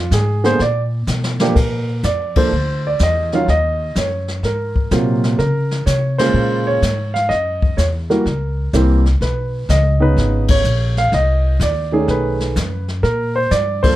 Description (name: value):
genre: jazz piano trio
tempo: 126 BPM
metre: 4/4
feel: swing 68% on 8ths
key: unclear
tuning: A4 = 440 Hz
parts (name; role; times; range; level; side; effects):
- dark grand piano; melody; 0.0-14.0 s; C3 to F5; -18 LUFS; right 1 dB; none
- upright bass; bass; 0.0-14.0 s; Ab1 to Db3; -18 LUFS; equal; none
- jazz brush drum kit; drums; 0.1-14.0 s; brushed snare drum, crash cymbal, hi-hat, kick drum, ride cymbal, snare drum; -22 LUFS; left 1 dB; none
room: little or no reverb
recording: dark, warm production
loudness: -15 LUFS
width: side -15 dB against mid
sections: 0.0-1.6 A section; 1.6-14.0 B section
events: grand piano solo 0.0-1.6; drum fill 1.1-1.6; band accent 2.3, 6.1, 10.4, 13.8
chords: 0.0 Fm; 0.6 Bb; 3.5 Ebm7; 4.4 Ab13; 5.4 Db6; 7.3 Gb7b9; 9.2 Bmaj9; 11.1 Cm; 12.1 B13; 13.0 Bb